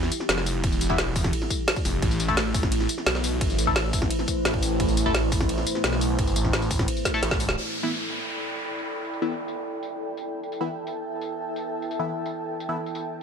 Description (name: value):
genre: dark technical drum and bass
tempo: 173 BPM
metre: 4/4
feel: straight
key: E minor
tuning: A4 = 439 Hz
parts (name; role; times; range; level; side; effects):
- deep dark ambient pad; sustained chords; 0.0-13.2 s; A3 to G5; -31 LUFS; right 1 dB; chorus, built-in reverb, sidechain pumping
- phased detuned saw bass; bass; 0.0-7.6 s; E1 to E2; -27 LUFS; equal; phaser, overdrive
- drum and bass drum kit; drums; 0.0-13.0 s; hi-hat, ride cymbal, snare drum, tambourine; -27 LUFS; equal; low-pass filter on hats, low-pass filter on perc, low-pass filter on snare, low-pass filter on cymbals, low-pass filter on room
- electronic kick drum; drums; 0.6-7.4 s; none; -27 LUFS; equal; none
- band-passed chord stab; stabs; 0.9-12.8 s; E3 to A4; -30 LUFS; left 3 dB; phaser, dub echo
- downlifter; sound effects; 7.6-10.3 s; none; -33 LUFS; equal; none
- airy breathy pad; texture; 7.6-13.2 s; E4 to B5; -31 LUFS; right 1 dB; chorus, sidechain pumping
room: light reverb, digital ambience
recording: none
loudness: -23 LUFS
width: side -7 dB against mid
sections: 0.0-7.6 A section; 7.6-13.2 B section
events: drop 0.0-7.6; drum fill 7.1-7.6; band accent 7.5; filter sweep on ambient pad 7.6-13.2; filter sweep on synth stab 7.6-13.2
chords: 0.0 Em; 2.0 Am; 7.6 Em